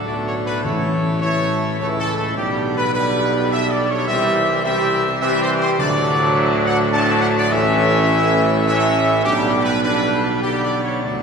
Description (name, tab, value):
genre	classical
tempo	104 BPM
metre	3/4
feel	straight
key	unclear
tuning	A4 = 438 Hz
part	mellow trumpet section	melody	0.0-11.2 s	G4 to A5	-20 LUFS	right 1 dB	none
part	clear trombone section	sustained chords	0.0-11.2 s	A2 to A3	-24 LUFS	right 2 dB	none
part	mellow French horn section	sustained chords	0.0-11.2 s	G3 to G4	-24 LUFS	left 4 dB	none
part	pipe organ, full organ	sustained chords	0.0-11.2 s	A2 to A4	-24 LUFS	equal	none
part	mellow tuba	bass	0.0-11.2 s	A1 to D2	-22 LUFS	right 2 dB	none
part	timpani	percussion	0.6-1.5, 5.8-6.6, 11.0-11.2 s	A2 to D3	-28 LUFS	left 1 dB	none
room	wet church reverb, RT60 2.9 s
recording	minimal, uncompressed stereo recording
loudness	-16 LUFS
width	side -5 dB against mid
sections	0.0-11.2 A section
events	timpani fill 11.0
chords	0.0 D; 0.7 A; 2.4 G/B; 4.1 C; 5.8 D; 7.5 A; 9.2 G/B